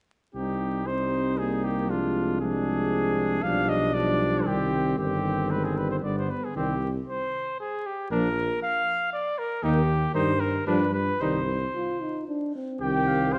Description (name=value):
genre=classical, brass quintet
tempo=116 BPM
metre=3/4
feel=straight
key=C minor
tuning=A4 = 440 Hz
part: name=clear cornet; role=melody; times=0.3-13.4 s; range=F4 to G5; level=-31 LUFS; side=equal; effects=none
part: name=mellow French horn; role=accompaniment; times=0.3-13.4 s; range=G3 to C4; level=-34 LUFS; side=equal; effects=none
part: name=clear trumpet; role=second line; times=0.4-13.4 s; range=B3 to C5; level=-34 LUFS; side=equal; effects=none
part: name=mellow trombone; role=accompaniment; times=0.4-13.4 s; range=C3 to F4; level=-34 LUFS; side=equal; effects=none
part: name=warm tuba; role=bass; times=0.4-13.4 s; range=G1 to G2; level=-32 LUFS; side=equal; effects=none
room=wet recital hall reverb, RT60 1.5 s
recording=vinyl crackle, nothing above 10.7 kHz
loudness=-27 LUFS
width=mono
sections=0.3-12.8 A section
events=none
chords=0.3 Cm; 1.9 Dm7b5/C; 3.4 G7/B; 4.5 Cm; 5.0 Cm/G; 6.0 G; 6.6 Cm; 8.1 Bb; 9.6 Eb; 10.2 Cm/G; 10.7 G7; 11.2 Cm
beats=| 0.35 0.87 1.39 | 1.90 2.41 2.92 | 3.43 3.94 4.46 | 4.98 5.51 6.03 | 6.56 7.08 7.60 | 8.11 8.62 9.13 | 9.64 10.15 10.68 | 11.21 11.75 12.28 | 12.81 13.33